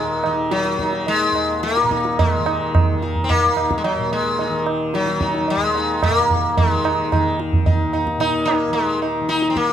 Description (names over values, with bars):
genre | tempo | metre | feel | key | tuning
indian classical, Hindustani | 110 BPM | 4/4 | straight | unclear | A4 = 445 Hz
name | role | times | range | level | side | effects
sitar | melody | 0.0-9.7 s | Gb3 to Eb4 | -19 LUFS | left 1 dB | none
tanpura | drone | 0.0-9.7 s | Eb2 to Eb3 | -25 LUFS | left 2 dB | none
tabla | percussion | 0.2-9.7 s | none | -21 LUFS | right 3 dB | none
room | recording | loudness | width
moderate recital hall reverb, RT60 1.7 s | close, detailed microphones | -17 LUFS | side -10 dB against mid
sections
0.0-9.7 A section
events
speeding up 0.0-9.7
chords
none